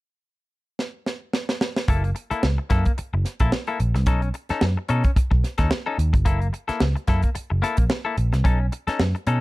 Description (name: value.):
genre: funk.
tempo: 110 BPM.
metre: 4/4.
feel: swing 56% on 16ths.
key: unclear.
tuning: A4 = 440 Hz.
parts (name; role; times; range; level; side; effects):
tight funk drum kit; drums; 0.8-9.4 s; hi-hat, kick drum, snare drum; -22 LUFS; equal; none.
semi-hollow electric guitar; accompaniment; 1.9-9.4 s; A#3 to A4; -27 LUFS; left 5 dB; none.
vintage muted picked electric bass; bass; 1.9-9.4 s; F#1 to B2; -22 LUFS; equal; none.
room: little or no reverb.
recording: dark, warm production.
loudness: -20 LUFS.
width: side -20 dB against mid.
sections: 0.0-1.9 A section; 1.9-9.4 B section.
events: drum fill 0.8-1.9.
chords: 0.0 N.C.; 1.9 F#7#9; 4.1 B9; 6.3 F#7#9; 8.4 B9.